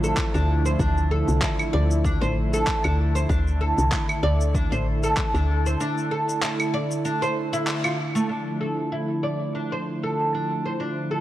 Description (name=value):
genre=organic downtempo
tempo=96 BPM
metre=4/4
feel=swing 55% on 16ths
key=D minor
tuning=A4 = 440 Hz
part: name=warm analog pad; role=sustained chords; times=0.0-11.2 s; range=D3 to A4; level=-28 LUFS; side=equal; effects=lush chorus, sidechain pumping
part: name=oud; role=arpeggios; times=0.0-11.2 s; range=A3 to D5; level=-26 LUFS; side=right 1 dB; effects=low-pass filter, ping-pong delay
part: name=woody FM bass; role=bass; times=0.0-5.8 s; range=A1 to D2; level=-22 LUFS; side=equal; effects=tube saturation
part: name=electronic shaker, handclaps and claves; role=drums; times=0.0-8.3 s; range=none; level=-30 LUFS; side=equal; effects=none
part: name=electronic kick drum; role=drums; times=0.2-5.3 s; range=none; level=-27 LUFS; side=equal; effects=none
room=moderate concert hall reverb, RT60 2.4 s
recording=worn, warbling old tape, cassette tape, warbly pitch drift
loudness=-21 LUFS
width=side -14 dB against mid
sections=0.0-8.3 A section; 8.3-11.2 B section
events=break 5.8-8.3; band accent 7.7-8.0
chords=0.0 Dmadd9